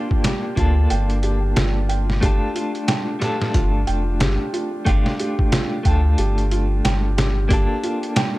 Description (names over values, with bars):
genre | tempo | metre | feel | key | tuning
trip hop | 91 BPM | 4/4 | swing 59% on 16ths | G minor | A4 = 440 Hz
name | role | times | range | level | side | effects
clean electric guitar | accompaniment | 0.0-8.4 s | A3 to A4 | -26 LUFS | left 1 dB | tremolo, tape echo
felt-muted upright piano | arpeggios | 0.0-8.4 s | F4 to G5 | -27 LUFS | right 2 dB | ping-pong delay
bowed-like drone | texture | 0.0-7.5 s | D4 | -38 LUFS | equal | none
trip hop sampler-style drum kit | drums | 0.1-8.4 s | hi-hat, kick drum, snare drum | -21 LUFS | equal | studio reverb
soft dub sub bass | bass | 0.6-7.7 s | F1 to D2 | -19 LUFS | equal | none
room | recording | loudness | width
digital ambience | dark, warm production | -17 LUFS | side -18 dB against mid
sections
0.0-7.5 A section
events
none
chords
0.0 Gm7; 2.2 Dm; 7.5 Gm7